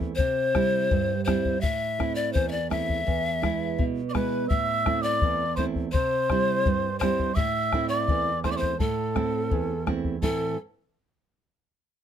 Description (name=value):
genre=andean folk, Andean ensemble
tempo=84 BPM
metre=2/4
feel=straight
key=A minor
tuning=A4 = 440 Hz
part: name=nylon-string guitar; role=accompaniment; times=0.0-10.6 s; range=E2 to E4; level=-28 LUFS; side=right 7 dB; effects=none
part: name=bombo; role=percussion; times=0.0-10.6 s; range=none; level=-28 LUFS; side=left 2 dB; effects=none
part: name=breathy bright pan flute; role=melody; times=0.2-10.6 s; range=A4 to E5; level=-27 LUFS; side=left 5 dB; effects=none
part: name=reedy large quena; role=second line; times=4.1-10.6 s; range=A5 to E6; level=-30 LUFS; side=right 4 dB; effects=none
room=light reverb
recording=close, detailed microphones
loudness=-23 LUFS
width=side -9 dB against mid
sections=0.0-10.2 A section; 10.2-11.6 B section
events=none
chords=0.2 C; 1.6 Am; 3.1 E; 4.5 Am; 5.9 C; 7.4 Am